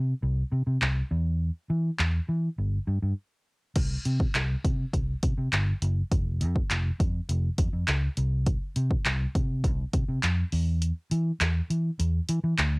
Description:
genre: dance-pop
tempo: 102 BPM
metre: 4/4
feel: straight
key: C major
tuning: A4 = 440 Hz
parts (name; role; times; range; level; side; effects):
- vintage muted fingered electric bass; bass; 0.0-12.8 s; F1 to E3; -26 LUFS; equal; sidechain pumping
- punchy analog drum machine; drums; 0.8-12.7 s; crash cymbal, handclaps, hi-hat, kick drum; -27 LUFS; equal; cassette tape
room: little or no reverb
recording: home recording on cassette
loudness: -25 LUFS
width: side -35 dB against mid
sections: 0.0-3.8 A section; 3.8-12.8 B section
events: break 3.2-3.8; kick muted 10.8-12.8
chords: none

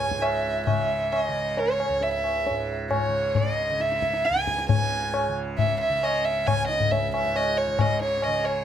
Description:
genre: indian classical, Hindustani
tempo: 135 BPM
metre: 4/4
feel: straight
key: unclear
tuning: A4 = 441 Hz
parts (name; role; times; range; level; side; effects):
- dark violin; melody; 0.0-8.6 s; C#5 to G#5; -24 LUFS; right 1 dB; none
- tanpura; drone; 0.0-8.6 s; C#2 to C#3; -33 LUFS; right 2 dB; none
- tabla; percussion; 0.1-8.6 s; none; -26 LUFS; left 3 dB; none
room: light reverb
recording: close, detailed microphones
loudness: -22 LUFS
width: side -9 dB against mid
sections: 0.0-4.7 A section; 4.7-8.6 B section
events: none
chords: none

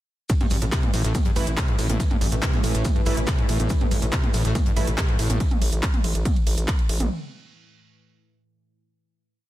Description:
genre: driving peak-time techno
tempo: 141 BPM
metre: 4/4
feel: straight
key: A minor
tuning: A4 = 440 Hz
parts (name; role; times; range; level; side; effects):
- screaming distorted acid line; riff; 0.3-5.4 s; G2 to C3; -27 LUFS; equal; distortion, analog chorus, sidechain pumping, ping-pong delay
- deep dark ambient pad; drone; 1.5-5.4 s; A2 to E3; -34 LUFS; right 1 dB; chorus, built-in reverb, sidechain pumping
- electronic kick drum; drums; 0.3-6.8 s; none; -23 LUFS; equal; none
- techno drum kit; drums; 0.3-7.1 s; handclaps, hi-hat, ride cymbal, toms; -29 LUFS; right 1 dB; none
- warm soul drum kit; drums; 0.3-5.4 s; hi-hat, shaker, snare drum; -38 LUFS; left 2 dB; none
- gritty driven synth bass; bass; 0.5-7.1 s; A1; -25 LUFS; equal; sidechain pumping
- sync-sweep polysynth; stabs; 1.4-4.9 s; E3 to E4; -33 LUFS; right 3 dB; chorus, cassette tape, sidechain pumping, ping-pong delay
room: light reverb, digital ambience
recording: dense, heavily limited modern master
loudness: -20 LUFS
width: side -15 dB against mid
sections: 0.3-7.1 drop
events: drop 0.3-7.1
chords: 0.3 A5

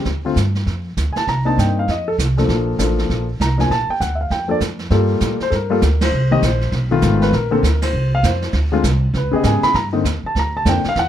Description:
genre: jazz piano trio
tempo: 198 BPM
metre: 4/4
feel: swing 62% on 8ths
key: Bb major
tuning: A4 = 441 Hz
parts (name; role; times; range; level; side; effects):
- warm grand piano; melody; 0.0-11.1 s; C#3 to B5; -18 LUFS; left 2 dB; none
- upright bass; bass; 0.0-11.1 s; Ab1 to A2; -18 LUFS; right 1 dB; none
- jazz brush drum kit; drums; 0.0-11.1 s; brushed snare drum, hi-hat, kick drum, ride cymbal, snare drum; -25 LUFS; right 4 dB; none
room: light reverb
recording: dark, warm production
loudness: -15 LUFS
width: side -10 dB against mid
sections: 0.0-4.9 A section; 4.9-11.1 B section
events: band accent 6.0, 7.8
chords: 0.1 Dm; 1.3 Cm9; 1.9 F; 2.5 Bbmaj7; 4.9 Gm9; 6.1 Cm7; 6.7 B7#11; 7.3 Bbadd9; 8.5 D7(no3); 9.1 C#5; 9.7 Cm9

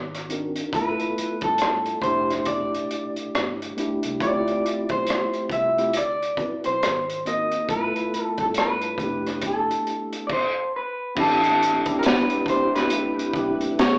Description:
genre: R&B, neo-soul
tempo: 69 BPM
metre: 4/4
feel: swing 59% on 16ths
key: unclear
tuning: A4 = 439 Hz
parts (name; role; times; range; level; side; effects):
- electric guitar through a small old amp; melody; 0.0-14.0 s; A4 to E5; -24 LUFS; equal; none
- vintage muted fingered electric bass; bass; 0.0-14.0 s; F1 to G2; -40 LUFS; equal; none
- crunchy breakbeat drum kit; drums; 0.1-14.0 s; crash cymbal, hi-hat, kick drum, rim click, snare drum; -26 LUFS; equal; none
- mellow tine electric piano; accompaniment; 0.3-14.0 s; B2 to B4; -26 LUFS; equal; medium stereo tremolo
- soft string machine; sustained chords; 11.8-14.0 s; E3 to B4; -34 LUFS; equal; ensemble chorus
room: wet large studio reverb, RT60 0.8 s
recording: band playing live in one room, AM radio sound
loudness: -21 LUFS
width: side -39 dB against mid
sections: 0.0-11.2 A section; 11.2-14.0 B section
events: none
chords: 0.0 G#9; 0.7 G13; 2.0 Fmaj9#11; 4.2 Dm9; 5.9 D13; 6.8 G#9; 7.7 G13; 9.0 Fmaj9#11; 11.2 Am9

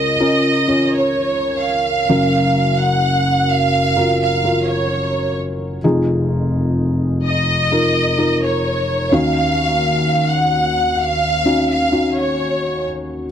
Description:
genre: pop ballad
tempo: 64 BPM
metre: 4/4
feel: straight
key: unclear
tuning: A4 = 438 Hz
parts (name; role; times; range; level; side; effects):
- bright studio violin section; melody; 0.0-12.9 s; Db5 to Gb5; -18 LUFS; right 2 dB; none
- felt-muted upright piano; accompaniment; 0.0-13.3 s; F1 to Db5; -17 LUFS; left 1 dB; none
room: light reverb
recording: dry, close 1970s-style studio recording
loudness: -14 LUFS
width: side -9 dB against mid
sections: 0.0-13.3 A section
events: none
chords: 0.0 Db6; 2.1 Gbmaj7; 5.8 Fm7; 9.1 Ebm7

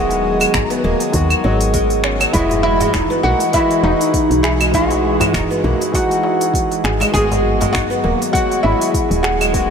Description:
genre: organic downtempo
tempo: 100 BPM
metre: 4/4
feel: swing 56% on 16ths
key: G# minor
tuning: A4 = 440 Hz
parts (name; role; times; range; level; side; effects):
- oud; melody; 0.0-9.7 s; D#4 to G#4; -18 LUFS; equal; analog delay
- barky tine electric piano; accompaniment; 0.0-9.7 s; D#3 to D#5; -22 LUFS; left 4 dB; overdrive, sidechain pumping, analog delay
- airy breathy pad; sustained chords; 0.0-9.7 s; E3 to D#5; -22 LUFS; right 2 dB; chorus, sidechain pumping
- oud; arpeggios; 0.0-9.7 s; F#3 to G#4; -23 LUFS; equal; analog delay
- woody FM bass; bass; 0.0-9.7 s; D#1 to D#2; -20 LUFS; equal; none
- organic electronic drum kit; drums; 0.1-9.7 s; claves, finger snaps, hi-hat, shaker; -22 LUFS; equal; overdrive
- electronic kick drum; drums; 0.5-9.7 s; none; -22 LUFS; equal; overdrive
- darbuka; percussion; 2.5-9.5 s; none; -28 LUFS; left 1 dB; none
room: wet lush hall reverb, RT60 3.2 s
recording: dreamy mix soaked in reverb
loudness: -13 LUFS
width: side -6 dB against mid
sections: 0.0-9.7 A section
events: none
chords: 0.0 G#m7; 2.3 Emaj9; 7.1 G#m7

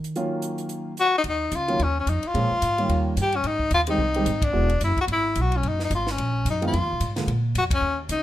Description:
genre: jazz, small-group swing and bop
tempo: 219 BPM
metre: 4/4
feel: swing 58% on 8ths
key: Eb minor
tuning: A4 = 440 Hz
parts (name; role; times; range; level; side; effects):
- upright bass; bass; 0.0-8.2 s; E1 to Eb3; -26 LUFS; equal; none
- compact cocktail drum kit; drums; 0.0-8.2 s; hi-hat, kick drum, ride cymbal, snare drum; -32 LUFS; equal; none
- warm concert grand piano; accompaniment; 0.2-7.3 s; D3 to Ab4; -27 LUFS; right 2 dB; none
- bright tenor saxophone; melody; 1.0-8.2 s; Db4 to G4; -23 LUFS; left 2 dB; none
room: little or no reverb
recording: minimal, uncompressed stereo recording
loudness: -21 LUFS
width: side -13 dB against mid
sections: 0.0-1.2 A section; 1.2-8.2 B section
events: upright bass solo 0.0-1.2; band accent 4.4, 7.7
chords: 0.0 Ebm9; 1.2 Eb7sus2; 2.3 Bbm7; 2.9 Eb7; 3.4 Abmaj7; 4.5 E9; 5.6 Gbmaj9; 6.7 Fm7b5; 7.3 Bb5

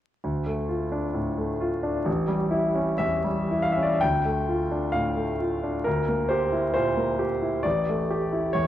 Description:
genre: classical, romantic character piece for solo piano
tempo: 66 BPM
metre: 2/4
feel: rubato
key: D minor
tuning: A4 = 440 Hz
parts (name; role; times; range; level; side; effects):
- clear grand piano; solo; 0.2-8.7 s; A1 to G5; -23 LUFS; equal; none
room: moderate recital hall reverb, RT60 1.4 s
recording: worn, warbling old tape, cassette tape, vinyl crackle, warbly pitch drift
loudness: -23 LUFS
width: side -12 dB against mid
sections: 0.2-4.0 A section; 4.0-8.7 B section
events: none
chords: 0.2 Dm; 2.1 A7; 4.0 Dm; 5.9 Edim/D; 7.6 A7

